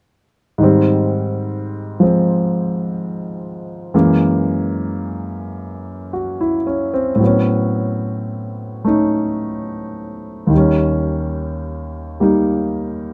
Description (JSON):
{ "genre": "solo jazz", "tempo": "72 BPM", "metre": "4/4", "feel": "swing 68% on 8ths, rubato", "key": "unclear", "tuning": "A4 = 440 Hz", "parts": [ { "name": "warm grand piano", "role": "solo", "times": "0.6-13.1 s", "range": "Eb2 to Gb4", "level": "-19 LUFS", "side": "equal", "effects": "none" } ], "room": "light reverb", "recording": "close, detailed microphones", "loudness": "-18 LUFS", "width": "mono", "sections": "0.6-13.1 A section", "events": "none", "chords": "0.6 Abmaj7; 3.9 Gb9; 7.2 A69; 10.5 Eb7" }